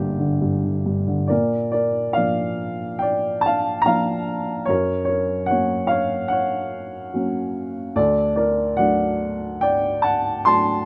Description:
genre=classical, lyrical solo piano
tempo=72 BPM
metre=4/4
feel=rubato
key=unclear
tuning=A4 = 440 Hz
part: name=dark upright piano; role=solo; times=0.0-10.9 s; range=G1 to C6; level=-21 LUFS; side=equal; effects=none
room=light reverb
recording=dark, warm production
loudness=-21 LUFS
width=mono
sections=0.0-1.3 A section; 1.3-10.9 B section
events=none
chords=0.0 Gm; 1.3 Bb; 4.7 Gb; 8.0 D

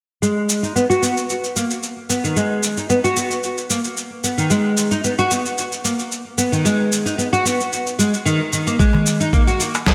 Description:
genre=organic downtempo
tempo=112 BPM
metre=4/4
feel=swing 53% on 16ths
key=G# minor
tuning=A4 = 439 Hz
part: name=nylon-string guitar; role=arpeggios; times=0.2-9.7 s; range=D#3 to F#4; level=-21 LUFS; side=equal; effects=analog chorus, low-pass filter, digital delay
part: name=electronic shaker and snare drum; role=drums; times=0.2-9.9 s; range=none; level=-25 LUFS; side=equal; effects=none
part: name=electronic kick drum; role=drums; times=8.8-9.9 s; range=none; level=-18 LUFS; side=equal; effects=none
part: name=darbuka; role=percussion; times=8.9-9.8 s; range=none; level=-25 LUFS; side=equal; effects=none
room=wet lush hall reverb, RT60 2.0 s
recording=bright 1980s-style digital production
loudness=-19 LUFS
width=mono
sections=0.2-9.9 A section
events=filter sweep on nylon-string guitar 0.2-9.9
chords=none

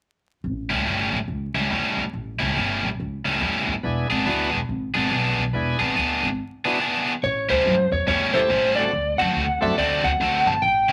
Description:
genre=electric blues shuffle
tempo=141 BPM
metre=4/4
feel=swing 63% on 8ths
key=A mixolydian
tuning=A4 = 440 Hz
part: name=upright bass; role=bass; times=0.4-10.9 s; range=E1 to F#2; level=-30 LUFS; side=equal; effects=none
part: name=cranked stack guitar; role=riff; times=0.7-10.9 s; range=A2 to G#4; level=-25 LUFS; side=equal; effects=overdrive
part: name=bright tonewheel organ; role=accompaniment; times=3.8-9.8 s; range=A3 to A4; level=-29 LUFS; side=equal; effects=overdrive, slow rotary speaker
part: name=lightly driven lead guitar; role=melody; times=7.2-10.9 s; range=C5 to A5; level=-23 LUFS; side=equal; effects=none
room=moderate club reverb, RT60 0.8 s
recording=vinyl crackle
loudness=-23 LUFS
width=mono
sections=0.4-7.2 A section; 7.2-10.9 B section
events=none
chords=0.4 A7; 3.8 E7; 7.2 A7; 8.9 D7

